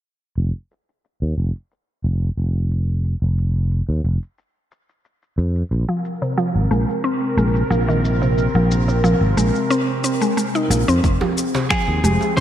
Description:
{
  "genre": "organic downtempo",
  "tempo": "90 BPM",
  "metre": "4/4",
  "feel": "straight",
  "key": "unclear",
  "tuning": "A4 = 440 Hz",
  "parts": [
    { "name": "sustaining fretless electric bass", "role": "bass", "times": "0.4-12.2 s", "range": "F1 to F2", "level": "-18 LUFS", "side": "equal", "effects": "sidechain pumping" },
    { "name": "electronic shaker and finger snaps", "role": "drums", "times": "0.4-12.4 s", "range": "none", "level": "-27 LUFS", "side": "left 2 dB", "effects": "overdrive, small room ambience" },
    { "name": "airy breathy pad", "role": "sustained chords", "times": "6.1-12.4 s", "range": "C3 to Bb4", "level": "-23 LUFS", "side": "right 1 dB", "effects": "chorus, sidechain pumping" },
    { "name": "mallet-like synth pluck", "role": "arpeggios", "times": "5.9-12.4 s", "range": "C3 to Eb4", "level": "-20 LUFS", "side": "equal", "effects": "chorus, digital delay" },
    { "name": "electronic kick drum", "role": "drums", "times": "11.0-12.4 s", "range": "none", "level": "-20 LUFS", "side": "equal", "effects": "overdrive, small room ambience" },
    { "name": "djembe", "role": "percussion", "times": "11.2-12.3 s", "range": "none", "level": "-27 LUFS", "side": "right 4 dB", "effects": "none" },
    { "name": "electric slide guitar", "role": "melody", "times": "11.7-12.4 s", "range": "Ab4 to C5", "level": "-22 LUFS", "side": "right 2 dB", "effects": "none" }
  ],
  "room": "moderate lush hall reverb, RT60 2.2 s",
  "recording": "bright 1980s-style digital production, low-pass filter",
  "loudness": "-17 LUFS",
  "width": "side -11 dB against mid",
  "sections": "0.4-11.0 A section; 11.0-12.4 B section",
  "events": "filter sweep on fretless electric bass 0.4-11.0; filter sweep 0.4-11.0",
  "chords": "0.4 N.C.; 5.7 Bbsus2; 11.0 Fm"
}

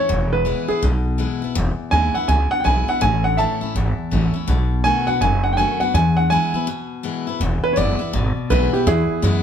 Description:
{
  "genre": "rockabilly",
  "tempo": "164 BPM",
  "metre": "4/4",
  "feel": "swing 63% on 8ths",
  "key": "E major",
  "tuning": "A4 = 441 Hz",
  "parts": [
    { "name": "warm upright piano", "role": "melody", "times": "0.0-9.4 s", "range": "E4 to A5", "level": "-20 LUFS", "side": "right 2 dB", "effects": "none" },
    { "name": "picked steel-string acoustic guitar", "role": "accompaniment", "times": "0.0-9.4 s", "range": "E2 to F#4", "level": "-24 LUFS", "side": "left 5 dB", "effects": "none" },
    { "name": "upright bass", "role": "bass", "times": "0.1-9.4 s", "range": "E1 to F#2", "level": "-20 LUFS", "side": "equal", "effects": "none" }
  ],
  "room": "light reverb",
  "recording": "band playing live in one room",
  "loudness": "-17 LUFS",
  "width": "side -8 dB against mid",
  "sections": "0.0-7.4 A section; 7.4-9.4 B section",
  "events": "break 6.7-7.4; upright piano solo 7.4-9.4",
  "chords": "0.1 E; 3.0 A; 4.5 B7; 5.9 E"
}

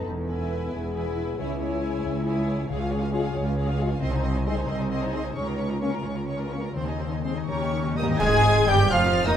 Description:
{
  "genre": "classical, dramatic, fast romantic movement for symphony orchestra",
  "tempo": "82-93 BPM (dotted quarters)",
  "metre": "6/8",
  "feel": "rubato",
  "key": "Ab major",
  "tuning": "A4 = 443 Hz",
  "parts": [
    { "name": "warm symphonic violin section", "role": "melody", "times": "0.0-9.4 s", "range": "F5 to Ab6", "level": "-34 LUFS", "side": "left 1 dB", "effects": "none" },
    { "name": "warm symphonic violin section", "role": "second line", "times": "0.0-9.4 s", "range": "G4 to Ab5", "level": "-33 LUFS", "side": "left 2 dB", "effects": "none" },
    { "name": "rich symphonic viola section", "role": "accompaniment", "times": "0.0-9.4 s", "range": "C4 to Ab4", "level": "-33 LUFS", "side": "right 1 dB", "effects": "none" },
    { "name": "dark French horn section", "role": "sustained chords", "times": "0.0-9.4 s", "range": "Eb3 to A4", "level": "-32 LUFS", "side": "left 4 dB", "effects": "none" },
    { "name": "concert harp", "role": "arpeggios", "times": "0.0-9.4 s", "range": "E2 to Eb5", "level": "-32 LUFS", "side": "left 7 dB", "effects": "none" },
    { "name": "rich symphonic double bass section", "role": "bass", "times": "0.1-9.3 s", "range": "E1 to Eb2", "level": "-30 LUFS", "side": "right 2 dB", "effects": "none" },
    { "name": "warm symphonic cello section", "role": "bass", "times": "0.1-9.4 s", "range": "C2 to Ab2", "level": "-30 LUFS", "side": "right 3 dB", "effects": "none" },
    { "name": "cymbal swell, clash cymbals and concert bass drum", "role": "percussion", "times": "5.3-9.1 s", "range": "none", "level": "-34 LUFS", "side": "equal", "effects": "none" },
    { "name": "timpani", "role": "percussion", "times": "6.8-8.9 s", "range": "Ab2 to Eb3", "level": "-33 LUFS", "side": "left 1 dB", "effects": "none" },
    { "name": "silver concert flute", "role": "second line", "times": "7.5-9.3 s", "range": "Db5 to Ab5", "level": "-30 LUFS", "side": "equal", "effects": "none" },
    { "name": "mellow trumpet section", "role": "stabs", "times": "7.5-9.3 s", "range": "Db4 to Ab4", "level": "-29 LUFS", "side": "right 2 dB", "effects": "none" },
    { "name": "warm clarinet", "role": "second line", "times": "8.2-9.4 s", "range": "Eb4 to Ab4", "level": "-31 LUFS", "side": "left 3 dB", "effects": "none" },
    { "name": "warm cor anglais", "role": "second line", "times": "8.2-9.3 s", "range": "Eb5 to Ab5", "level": "-32 LUFS", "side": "right 3 dB", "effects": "none" },
    { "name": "clear bassoon", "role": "accompaniment", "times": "8.2-9.4 s", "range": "Eb3 to Ab3", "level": "-28 LUFS", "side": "right 3 dB", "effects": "none" },
    { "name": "mellow trombone section", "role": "sustained chords", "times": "8.2-9.3 s", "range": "Eb3 to Ab3", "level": "-33 LUFS", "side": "right 3 dB", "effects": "none" }
  ],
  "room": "moderate scoring stage reverb, RT60 1.8 s",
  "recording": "none",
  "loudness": "-23 LUFS",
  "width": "side -9 dB against mid",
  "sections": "0.0-8.2 A section; 8.2-9.4 B section",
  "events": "timpani fill 7.5-8.2; band accent 8.2-8.7",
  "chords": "0.1 E; 1.4 C#m; 2.7 Db; 4.0 Ab/C; 5.4 Bbm/Db; 6.8 Ab/Eb; 7.5 Eb; 8.2 Ab"
}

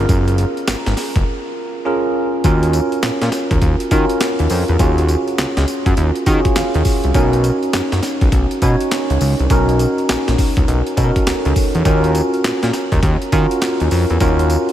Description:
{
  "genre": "R&B, new jack swing",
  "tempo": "102 BPM",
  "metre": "4/4",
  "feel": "swing 64% on 16ths",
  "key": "unclear",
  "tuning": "A4 = 439 Hz",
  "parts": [
    { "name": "bell-like tine electric piano", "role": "accompaniment", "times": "0.0-14.7 s", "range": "C#4 to E#5", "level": "-18 LUFS", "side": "right 1 dB", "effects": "wide subtle chorus" },
    { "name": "fat analog bass", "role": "bass", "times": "0.0-14.6 s", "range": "F#1 to D#3", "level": "-16 LUFS", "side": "equal", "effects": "none" },
    { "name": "breakbeat sampler-style drum kit", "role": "drums", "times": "0.1-14.7 s", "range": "handclaps, hi-hat, kick drum, snare drum, tambourine", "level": "-19 LUFS", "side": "equal", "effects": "none" }
  ],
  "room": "light reverb",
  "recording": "none",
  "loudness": "-14 LUFS",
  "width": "side -11 dB against mid",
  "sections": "0.0-2.4 A section; 2.4-14.7 B section",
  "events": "break 1.3-2.4; tine electric piano fill 6.3-7.1",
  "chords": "0.0 F#maj7; 2.4 D#m9; 7.1 Bmaj9; 11.9 D#m9"
}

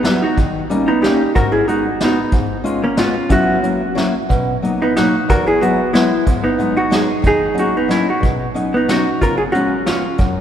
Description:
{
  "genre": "musette waltz",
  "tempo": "184 BPM",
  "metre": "3/4",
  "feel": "rubato",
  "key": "B major",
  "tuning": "A4 = 440 Hz",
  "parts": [
    { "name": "vintage hollow-body jazz guitar", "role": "melody", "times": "0.0-10.2 s", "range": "A#3 to A#4", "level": "-16 LUFS", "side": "right 1 dB", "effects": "none" },
    { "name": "fingerpicked steel-string acoustic guitar", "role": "accompaniment", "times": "0.0-10.4 s", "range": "E2 to F#4", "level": "-19 LUFS", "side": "left 2 dB", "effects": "none" },
    { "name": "vintage brush drum kit", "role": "drums", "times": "0.0-10.3 s", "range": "hi-hat, kick drum, snare drum", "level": "-21 LUFS", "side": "equal", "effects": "none" }
  ],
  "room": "wet church reverb, RT60 3.5 s",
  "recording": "recorded in a church or concert hall",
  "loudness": "-14 LUFS",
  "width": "side -9 dB against mid",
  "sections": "0.0-10.4 A section",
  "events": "none",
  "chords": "0.4 D#7; 1.3 G#m7; 2.3 C#7/G#; 3.3 F#7sus4; 3.6 F#7; 4.3 Bmaj7; 5.3 Eadd9; 6.3 G#m7; 7.2 D#m7; 8.2 Badd9; 9.2 C#7"
}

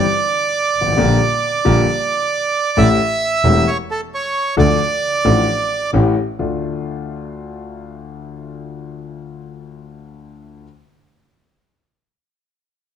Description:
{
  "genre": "tango",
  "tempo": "133 BPM",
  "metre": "4/4",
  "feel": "rubato",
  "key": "D minor",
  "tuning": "A4 = 440 Hz",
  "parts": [
    { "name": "bandoneon", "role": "melody", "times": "0.0-5.9 s", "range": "A4 to E5", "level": "-17 LUFS", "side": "right 4 dB", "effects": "none" },
    { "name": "warm upright piano", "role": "accompaniment", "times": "0.0-10.6 s", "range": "E1 to A4", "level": "-20 LUFS", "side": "left 5 dB", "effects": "none" },
    { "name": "clear double bass", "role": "bass", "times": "0.0-6.6 s", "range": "E1 to D2", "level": "-18 LUFS", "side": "right 2 dB", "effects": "none" }
  ],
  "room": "light reverb",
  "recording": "close, detailed microphones",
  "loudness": "-14 LUFS",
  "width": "side -8 dB against mid",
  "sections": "0.0-6.4 A section; 6.4-10.0 B section",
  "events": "none",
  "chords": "0.0 N.C.; 1.0 Gm/Bb; 2.8 A7; 4.6 Dm; 5.9 A7; 6.4 Dm"
}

